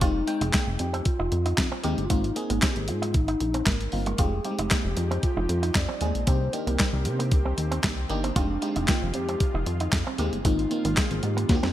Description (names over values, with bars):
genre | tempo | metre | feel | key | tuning
early-eighties boogie funk | 115 BPM | 4/4 | straight | F dorian | A4 = 442 Hz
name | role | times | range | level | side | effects
hollow clarinet-like synth lead | melody | 0.0-11.7 s | D4 to D5 | -32 LUFS | left 1 dB | chorus
FM electric piano | accompaniment | 0.0-11.7 s | G3 to G5 | -32 LUFS | left 1 dB | chorus, phaser
electric guitar with an envelope filter | riff | 0.0-11.7 s | G3 to F4 | -34 LUFS | right 4 dB | lush chorus
chorused synth bass | bass | 0.0-11.7 s | F1 to C3 | -27 LUFS | equal | none
crisp 8-bit digital drum machine | drums | 0.0-11.7 s | handclaps, hi-hat, kick drum, snare drum | -26 LUFS | equal | none
lush unison pad | sustained chords | 4.2-11.7 s | Eb3 to G4 | -39 LUFS | left 1 dB | chorus
room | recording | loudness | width
light reverb, digital ambience | bright 1980s-style digital production | -23 LUFS | side -13 dB against mid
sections
0.0-11.7 A section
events
drum fill 11.5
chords
0.0 Fm9; 2.1 Ab6; 4.2 Fm9; 6.3 Cm7; 8.4 Fm9; 10.4 Ab6